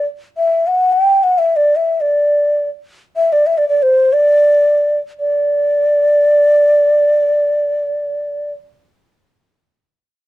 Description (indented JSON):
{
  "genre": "indian classical, Hindustani",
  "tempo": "free time",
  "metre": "none",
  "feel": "none",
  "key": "D major",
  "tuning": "A4 = 440 Hz",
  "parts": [
    { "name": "breathy mellow bansuri", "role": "solo", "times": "0.0-8.5 s", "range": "C5 to G5", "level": "-12 LUFS", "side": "equal", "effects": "none" }
  ],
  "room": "light reverb",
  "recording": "dark, warm production",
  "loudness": "-12 LUFS",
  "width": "side -16 dB against mid",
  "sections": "0.0-5.2 A section; 5.2-7.8 B section",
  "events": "none",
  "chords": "none"
}